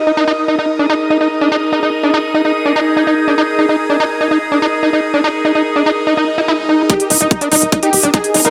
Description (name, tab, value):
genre	psychedelic trance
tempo	145 BPM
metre	4/4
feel	straight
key	unclear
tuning	A4 = 441 Hz
part	evolving wavetable pad	sustained chords	0.0-8.5 s	Eb4 to Eb5	-21 LUFS	equal	phaser, built-in reverb, sidechain pumping
part	airy breathy pad	texture	0.0-8.5 s	Eb4 to Eb6	-21 LUFS	equal	chorus, sidechain pumping
part	screaming distorted acid line	riff	0.1-8.5 s	D4 to Fb4	-17 LUFS	equal	distortion, chorus, cassette tape, sidechain pumping, dub echo
part	swell	sound effects	6.3-6.9 s	none	-26 LUFS	equal	none
part	unison lead	melody	6.9-8.5 s	Eb4 to Bb4	-19 LUFS	equal	phaser, sidechain pumping, dub echo
part	electronic hi-hat	drums	6.9-8.5 s	none	-16 LUFS	equal	none
part	electronic kick drum	drums	6.9-8.2 s	none	-16 LUFS	equal	high-pass filter on kick
part	tight sequencer bass	bass	7.1-8.5 s	Eb1	-24 LUFS	equal	tube saturation, high-pass filter
part	formant-sweep wobble bass	second line	8.3-8.5 s	Bb3	-22 LUFS	equal	analog chorus, sidechain pumping, high-pass filter
room	moderate lush hall reverb, RT60 1.7 s, digital ambience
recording	none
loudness	-14 LUFS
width	mono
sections	0.0-6.9 A section; 6.9-8.5 B section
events	filter sweep on ambient pad 0.0-6.9; swell 6.3-6.9; build-up 6.9-8.5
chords	0.0 Eb5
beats	| 0.28 0.69 1.10 1.52 | 1.93 2.34 2.76 3.17 | 3.59 4.00 4.41 4.83 | 5.24 5.66 6.07 6.48 | 6.90 7.31 7.72 8.14